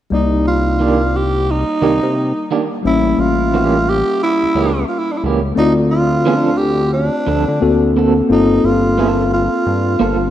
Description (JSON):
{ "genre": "R&B, neo-soul", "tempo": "88 BPM", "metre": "4/4", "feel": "swing 62% on 16ths", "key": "C dorian", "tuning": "A4 = 440 Hz", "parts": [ { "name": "raspy tenor saxophone", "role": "melody", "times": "0.1-10.3 s", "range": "D4 to G4", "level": "-18 LUFS", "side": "right 2 dB", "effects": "slapback echo" }, { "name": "tine electric piano", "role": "accompaniment", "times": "0.1-10.3 s", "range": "G3 to E5", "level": "-17 LUFS", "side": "left 4 dB", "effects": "none" }, { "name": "fat analog bass", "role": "bass", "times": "0.1-10.3 s", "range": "G1 to D3", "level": "-18 LUFS", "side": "equal", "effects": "none" }, { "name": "electric guitar through a small old amp", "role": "second line", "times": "0.8-10.2 s", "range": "Eb3 to A4", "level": "-20 LUFS", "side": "right 6 dB", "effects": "tremolo" } ], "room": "moderate lush hall reverb, RT60 2.9 s", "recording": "rough home demo mix", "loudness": "-13 LUFS", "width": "side -11 dB against mid", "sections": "0.1-10.3 A section", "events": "none", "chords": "0.1 Cm9; 2.8 A7b9; 5.6 Dm7; 7.6 D7b13; 8.3 Gm11" }